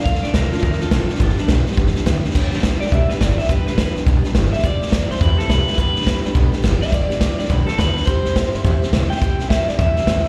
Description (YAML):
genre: rockabilly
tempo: 210 BPM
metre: 4/4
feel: swing 61% on 8ths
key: G major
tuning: A4 = 440 Hz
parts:
  - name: electric guitar through a small old amp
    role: melody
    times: 0.0-10.3 s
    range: D4 to G5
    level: -26 LUFS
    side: equal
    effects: tape echo
  - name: picked steel-string acoustic guitar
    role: accompaniment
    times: 0.0-10.3 s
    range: G2 to A4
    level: -28 LUFS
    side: equal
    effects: slapback echo
  - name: vintage drum kit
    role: drums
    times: 0.0-10.3 s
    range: crash cymbal, hi-hat, kick drum, snare drum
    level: -21 LUFS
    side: equal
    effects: none
  - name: upright bass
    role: bass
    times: 0.1-10.3 s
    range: G1 to G2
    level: -23 LUFS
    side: equal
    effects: none
room: little or no reverb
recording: live gig heard through the venue's PA, recital hall reverb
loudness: -18 LUFS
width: mono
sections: 0.0-2.4 A section; 2.4-10.3 B section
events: none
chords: 0.0 D7; 1.2 G; 4.6 C; 5.8 G; 8.1 C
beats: | 0.06 0.34 0.63 0.92 | 1.20 1.49 1.78 2.06 | 2.35 2.64 2.92 3.21 | 3.50 3.78 4.07 4.35 | 4.64 4.93 5.21 5.50 | 5.79 6.07 6.36 6.64 | 6.93 7.22 7.50 7.79 | 8.07 8.36 8.65 8.93 | 9.22 9.51 9.79 10.08